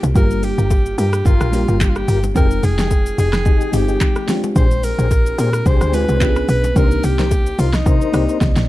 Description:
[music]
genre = amapiano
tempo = 109 BPM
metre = 4/4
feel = swing 55% on 16ths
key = C minor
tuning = A4 = 440 Hz
[part]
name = breathy alto saxophone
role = melody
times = 0.0-8.7 s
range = Eb4 to C5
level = -22 LUFS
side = equal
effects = digital delay
[part]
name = bell-like FM electric piano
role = accompaniment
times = 0.0-8.7 s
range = G3 to G5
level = -23 LUFS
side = equal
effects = chorus
[part]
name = woody log drum bass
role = bass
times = 0.0-8.7 s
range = F1 to C3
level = -18 LUFS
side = equal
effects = none
[part]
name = deep house drum kit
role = drums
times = 0.0-8.7 s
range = handclaps, hi-hat, kick drum, rim click, shaker, snare drum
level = -17 LUFS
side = equal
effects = none
[part]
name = bongos and congas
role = percussion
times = 0.0-8.6 s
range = none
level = -28 LUFS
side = left 3 dB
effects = none
[part]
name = mellow tonewheel organ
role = stabs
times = 0.2-8.4 s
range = D4 to C5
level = -27 LUFS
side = left 9 dB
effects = chorus vibrato, digital delay
[sound]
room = little or no reverb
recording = dark, warm production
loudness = -14 LUFS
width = side -16 dB against mid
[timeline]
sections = 0.0-8.7 A section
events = drum fill 8.4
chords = 0.2 Gm7; 2.4 Fm9; 4.3 Bb13; 6.2 Bdim7; 6.8 Cm7

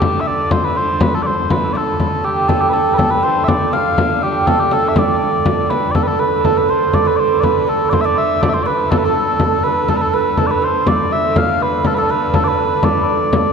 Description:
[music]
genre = medieval dance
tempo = 122 BPM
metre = 2/4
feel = straight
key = D dorian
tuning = A4 = 439 Hz
[part]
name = mellow small bagpipes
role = melody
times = 0.0-13.5 s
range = G4 to F5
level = -17 LUFS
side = left 1 dB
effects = tape echo
[part]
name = rich hurdy-gurdy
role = drone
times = 0.0-13.5 s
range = D3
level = -24 LUFS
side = right 1 dB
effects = none
[part]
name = frame drum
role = percussion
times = 0.0-13.5 s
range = none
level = -18 LUFS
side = left 2 dB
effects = none
[part]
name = hammered dulcimer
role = second line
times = 2.2-13.5 s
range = G4 to F5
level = -18 LUFS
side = right 6 dB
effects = none
[sound]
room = wet church reverb, RT60 3.8 s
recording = dark, warm production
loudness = -13 LUFS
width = side -6 dB against mid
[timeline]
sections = 0.0-5.9 A section; 5.9-13.5 B section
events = none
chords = none

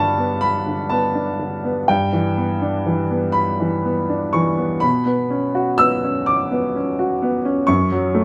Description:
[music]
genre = neoclassical minimalist piano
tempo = 41 BPM (dotted quarters)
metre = 6/8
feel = rubato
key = B minor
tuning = A4 = 440 Hz
[part]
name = warm baby grand piano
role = solo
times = 0.0-8.2 s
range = F#2 to E6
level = -19 LUFS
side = equal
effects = none
[sound]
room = moderate stone room reverb, RT60 1.3 s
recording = band playing live in one room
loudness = -20 LUFS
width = mono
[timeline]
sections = 0.0-8.2 A section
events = none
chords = 0.0 Gadd9; 1.9 Em7/G; 4.8 Bmadd9; 7.7 F#m

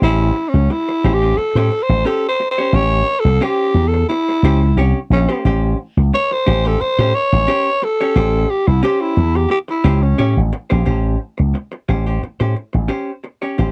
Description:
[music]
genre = funk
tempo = 88 BPM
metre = 4/4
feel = straight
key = A mixolydian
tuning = A4 = 439 Hz
[part]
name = growling tenor saxophone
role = melody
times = 0.0-10.4 s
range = C#4 to C#5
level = -19 LUFS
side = equal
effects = none
[part]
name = vintage hollow-body jazz guitar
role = accompaniment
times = 0.0-13.7 s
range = C#4 to C#5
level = -24 LUFS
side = equal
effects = none
[part]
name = slap bass with an envelope filter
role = bass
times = 0.0-13.7 s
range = A1 to A2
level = -17 LUFS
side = equal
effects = none
[sound]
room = little or no reverb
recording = dry, close 1970s-style studio recording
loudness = -16 LUFS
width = mono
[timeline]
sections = 0.0-10.9 A section; 10.9-13.7 B section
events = tenor saxophone solo 0.0-10.9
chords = 0.0 A7#9

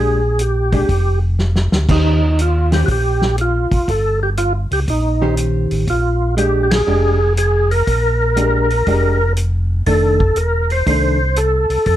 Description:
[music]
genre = soul jazz organ trio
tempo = 120 BPM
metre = 4/4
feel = swing 67% on 8ths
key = Bb major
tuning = A4 = 440 Hz
[part]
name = percussive tonewheel organ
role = melody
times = 0.0-12.0 s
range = Eb4 to C5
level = -18 LUFS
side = right 1 dB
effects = slow rotary speaker, overdrive, chorus vibrato
[part]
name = vintage hollow-body jazz guitar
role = accompaniment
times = 0.0-11.2 s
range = Eb3 to C5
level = -20 LUFS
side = equal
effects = none
[part]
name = mellow tonewheel organ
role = bass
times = 0.0-12.0 s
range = E1 to F2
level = -17 LUFS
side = equal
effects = slow rotary speaker
[part]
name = warm soul drum kit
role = drums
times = 0.4-12.0 s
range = crash cymbal, hi-hat, kick drum, ride cymbal, snare drum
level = -21 LUFS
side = equal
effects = none
[sound]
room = light reverb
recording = dark, warm production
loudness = -14 LUFS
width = side -12 dB against mid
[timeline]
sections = 0.0-12.0 A section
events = drum fill 1.4-1.9; band accent 6.6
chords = 0.0 Bb6; 1.9 Eb13; 5.9 Bb6; 9.9 F6

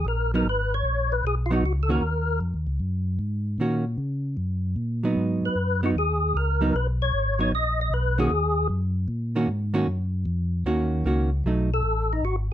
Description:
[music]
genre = soul jazz organ trio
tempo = 153 BPM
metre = 4/4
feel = swing 66% on 8ths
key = Eb minor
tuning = A4 = 439 Hz
[part]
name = percussive tonewheel organ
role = melody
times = 0.0-2.4, 5.5-8.7, 11.7-12.4 s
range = D#4 to Eb5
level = -26 LUFS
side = left 1 dB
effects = slow rotary speaker, overdrive, chorus vibrato
[part]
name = mellow tonewheel organ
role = bass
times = 0.0-12.5 s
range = Ab1 to Db3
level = -25 LUFS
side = equal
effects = overdrive, chorus vibrato, slow rotary speaker
[part]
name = hollow-body jazz guitar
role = accompaniment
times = 0.3-11.7 s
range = Eb3 to Gb4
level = -25 LUFS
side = right 2 dB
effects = none
[sound]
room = light reverb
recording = close, detailed microphones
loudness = -22 LUFS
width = side -12 dB against mid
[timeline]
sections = 0.0-12.5 A section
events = none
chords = 0.5 Abm7; 2.0 Ebm7; 5.2 Abm7; 8.3 Ebm7; 11.4 B7

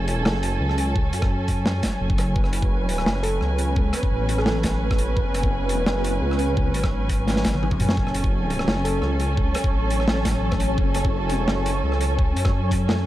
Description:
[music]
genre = half-time drum and bass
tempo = 171 BPM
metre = 4/4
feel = half-time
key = F# minor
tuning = A4 = 438 Hz
[part]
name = dark studio string section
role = sustained chords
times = 0.0-13.1 s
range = F#3 to G#5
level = -27 LUFS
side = right 2 dB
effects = vintage 12-bit sampler grit, sidechain pumping
[part]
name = dark detuned saw bass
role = bass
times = 0.0-13.0 s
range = F#1 to F#2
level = -24 LUFS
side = equal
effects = none
[part]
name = flickering grainy texture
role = texture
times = 0.0-13.1 s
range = B3 to G#5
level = -32 LUFS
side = left 1 dB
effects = built-in reverb
[part]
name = crunchy breakbeat drum kit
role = drums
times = 0.1-13.0 s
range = hi-hat, rim click, snare drum, toms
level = -26 LUFS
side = equal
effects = none
[part]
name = electronic kick drum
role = drums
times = 1.0-12.8 s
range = none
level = -24 LUFS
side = equal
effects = none
[part]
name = soft struck synth lead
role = melody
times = 3.2-4.9, 8.8-9.2 s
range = A4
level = -33 LUFS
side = equal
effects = chorus, dub echo
[sound]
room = small room ambience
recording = none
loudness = -20 LUFS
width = side -14 dB against mid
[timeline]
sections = 0.0-13.1 A section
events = drum fill 7.3-8.0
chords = 0.0 F#madd9

